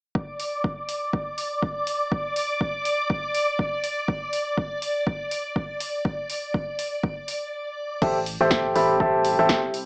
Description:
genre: piano house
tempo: 122 BPM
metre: 4/4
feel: swing 58% on 16ths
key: A minor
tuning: A4 = 440 Hz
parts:
  - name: string machine, violins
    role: sustained chords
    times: 0.1-8.0 s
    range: D5 to D6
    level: -27 LUFS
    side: equal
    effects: ensemble chorus, sidechain pumping, cassette tape
  - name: electronic kick drum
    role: drums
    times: 0.1-9.6 s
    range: none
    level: -27 LUFS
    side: equal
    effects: cassette tape
  - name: punchy analog drum machine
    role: drums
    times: 0.4-9.9 s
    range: crash cymbal, hi-hat, snare drum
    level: -30 LUFS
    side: equal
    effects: cassette tape
  - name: bright upright piano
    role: riff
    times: 8.0-9.6 s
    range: G4 to B5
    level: -19 LUFS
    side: equal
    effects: sidechain pumping, low-pass filter, cassette tape, analog delay
  - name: organ-like FM bass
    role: bass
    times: 8.0-9.6 s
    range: A1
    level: -33 LUFS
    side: equal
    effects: sidechain pumping
  - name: deep dark ambient pad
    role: texture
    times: 8.8-9.9 s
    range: E5 to A5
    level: -31 LUFS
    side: equal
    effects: chorus, built-in reverb, sidechain pumping, cassette tape
room: moderate studio reverb, RT60 0.5 s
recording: home recording on cassette, small speaker sound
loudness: -23 LUFS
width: side -32 dB against mid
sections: 0.1-8.0 A section; 8.0-9.9 B section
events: filter sweep on string machine 0.1-8.0; break 7.5-8.0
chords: 0.1 N.C.; 8.0 Am7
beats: | 0.15 0.64 1.13 1.62 | 2.12 2.61 3.10 3.59 | 4.08 4.58 5.07 5.56 | 6.05 6.54 7.04 7.53 | 8.02 8.51 9.00 9.49

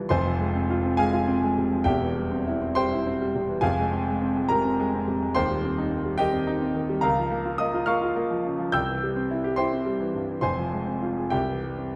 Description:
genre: classical, virtuoso piano study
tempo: 70 BPM (dotted quarters)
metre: 6/8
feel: rubato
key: F minor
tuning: A4 = 440 Hz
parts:
  - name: clear concert grand piano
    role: solo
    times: 0.0-12.0 s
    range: Eb1 to G6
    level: -25 LUFS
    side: equal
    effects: none
room: moderate recital hall reverb, RT60 1.5 s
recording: none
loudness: -25 LUFS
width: mono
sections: 0.1-12.0 A section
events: none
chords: 0.1 Fm; 1.8 C/E; 3.6 Fm; 5.4 Cm/Eb; 7.0 Bbm/Db; 8.7 C; 10.4 Fm; 11.3 C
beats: | 0.10 0.97 | 1.84 2.77 | 3.63 4.50 | 5.35 6.19 | 7.04 7.88 | 8.73 9.58 | 10.43 11.33

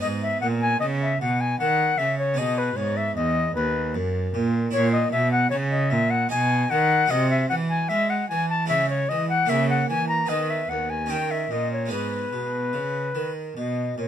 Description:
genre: classical, baroque-style sonata movement with continuo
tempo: 76 BPM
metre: 3/4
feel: straight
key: G# minor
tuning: A4 = 440 Hz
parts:
  - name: concert flute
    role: melody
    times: 0.0-14.1 s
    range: B4 to A#5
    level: -24 LUFS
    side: left 3 dB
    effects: none
  - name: harpsichord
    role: accompaniment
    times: 0.0-14.1 s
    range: D#2 to D#5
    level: -29 LUFS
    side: right 3 dB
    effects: none
  - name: rich cello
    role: bass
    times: 0.0-14.1 s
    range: D#2 to G#3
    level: -26 LUFS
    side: right 2 dB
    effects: none
room: light reverb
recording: none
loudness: -21 LUFS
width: side -10 dB against mid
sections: 0.0-14.1 A section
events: none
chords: 0.0 G#m; 4.7 C#m13/A#; 6.3 B; 7.1 G#7/B#; 8.7 C#m; 9.5 A#dim/C#; 10.3 G#m/D#; 11.1 D#5; 11.9 G#m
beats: | 0.03 0.82 1.60 | 2.38 3.16 3.95 | 4.74 5.52 6.31 | 7.11 7.90 8.70 | 9.49 10.30 11.11 | 11.92 12.74 13.56

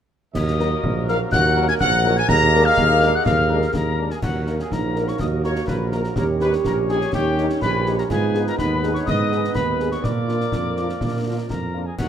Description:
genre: military-style march for wind band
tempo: 124 BPM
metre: 2/4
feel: straight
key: Eb minor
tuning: A4 = 440 Hz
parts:
  - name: mellow trumpet section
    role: melody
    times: 0.3-12.1 s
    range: Gb4 to Bb5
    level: -26 LUFS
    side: equal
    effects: none
  - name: mellow woodwind section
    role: second line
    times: 0.3-12.1 s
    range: Eb4 to Db5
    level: -30 LUFS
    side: left 2 dB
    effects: none
  - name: piccolo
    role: second line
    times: 0.3-12.1 s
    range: Gb5 to Bb6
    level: -25 LUFS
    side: left 5 dB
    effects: none
  - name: mellow tuba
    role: bass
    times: 0.3-12.1 s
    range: Bb1 to Bb2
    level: -22 LUFS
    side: right 2 dB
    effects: none
  - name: warm trombone section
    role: sustained chords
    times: 0.4-12.1 s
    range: F3 to Db4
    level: -29 LUFS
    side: right 2 dB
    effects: none
  - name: concert snare drum, clash cymbals and concert bass drum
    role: drums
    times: 0.4-12.1 s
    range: none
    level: -28 LUFS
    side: left 1 dB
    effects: none
  - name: warm French horn section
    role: accompaniment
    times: 0.6-11.8 s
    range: Gb3 to Bb4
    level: -28 LUFS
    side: left 4 dB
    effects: none
  - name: mellow euphonium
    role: second line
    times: 4.7-12.1 s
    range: Bb3 to G4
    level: -26 LUFS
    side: right 4 dB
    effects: none
room: moderate concert hall reverb, RT60 1.9 s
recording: none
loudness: -18 LUFS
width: side -9 dB against mid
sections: 0.4-4.2 A section; 4.2-12.1 B section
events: none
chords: 0.4 Ebm; 2.3 Bb7/Eb; 4.2 Ebm; 6.2 Eb7; 8.1 Abm; 10.0 Bb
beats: | 0.36 0.84 | 1.32 1.81 | 2.29 2.78 | 3.26 3.75 | 4.23 4.71 | 5.20 5.68 | 6.17 6.65 | 7.14 7.62 | 8.11 8.59 | 9.08 9.56 | 10.05 10.53 | 11.02 11.50 | 11.99

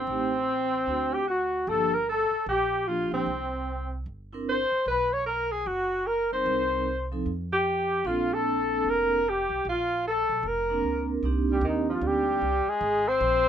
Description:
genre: jazz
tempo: 151 BPM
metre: 4/4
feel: swing 64% on 8ths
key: unclear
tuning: A4 = 440 Hz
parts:
  - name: warm flugelhorn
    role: melody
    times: 0.0-13.5 s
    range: C4 to Db5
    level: -26 LUFS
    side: left 2 dB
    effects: none
  - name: clear alto saxophone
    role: second line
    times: 0.0-13.5 s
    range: Eb3 to Db5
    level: -31 LUFS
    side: right 4 dB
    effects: none
  - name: upright bass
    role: bass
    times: 0.0-13.5 s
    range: F1 to F2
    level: -35 LUFS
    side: right 1 dB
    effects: none
  - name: vibraphone with medium hard mallets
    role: accompaniment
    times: 0.1-12.4 s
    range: F3 to Bb4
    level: -30 LUFS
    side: right 4 dB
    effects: none
room: light reverb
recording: minimal, uncompressed stereo recording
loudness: -24 LUFS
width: side -9 dB against mid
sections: 0.0-11.2 A section; 11.2-13.5 B section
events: none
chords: 0.1 Am7b5; 0.9 D7; 1.7 Gm7; 3.3 C5; 4.9 Bmaj7(no3); 6.5 Cm7; 7.3 Fsus2; 8.1 Bbmaj9; 11.2 Cm9; 12.8 Abadd9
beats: | 0.08 0.48 0.88 1.28 | 1.68 2.08 2.48 2.87 | 3.27 3.67 4.07 4.47 | 4.87 5.27 5.67 6.06 | 6.46 6.86 7.26 7.66 | 8.06 8.46 8.85 9.25 | 9.65 10.05 10.45 10.84 | 11.24 11.64 12.03 12.43 | 12.83 13.22

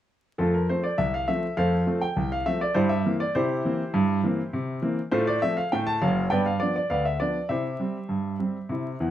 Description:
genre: ragtime piano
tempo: 101 BPM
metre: 2/4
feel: straight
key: F major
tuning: A4 = 440 Hz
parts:
  - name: warm grand piano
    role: solo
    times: 0.4-9.1 s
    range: Gb1 to A5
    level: -23 LUFS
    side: equal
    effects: none
room: wet studio reverb, RT60 0.5 s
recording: heard from further back in the room, vinyl crackle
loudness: -23 LUFS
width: side -12 dB against mid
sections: 0.4-9.1 A section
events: none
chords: 0.4 F; 2.8 C7/G; 5.1 F/A; 6.3 G7; 7.5 C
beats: | 0.39 0.98 | 1.57 2.17 | 2.76 3.35 | 3.94 4.53 | 5.12 5.71 | 6.30 6.89 | 7.49 8.09 | 8.69

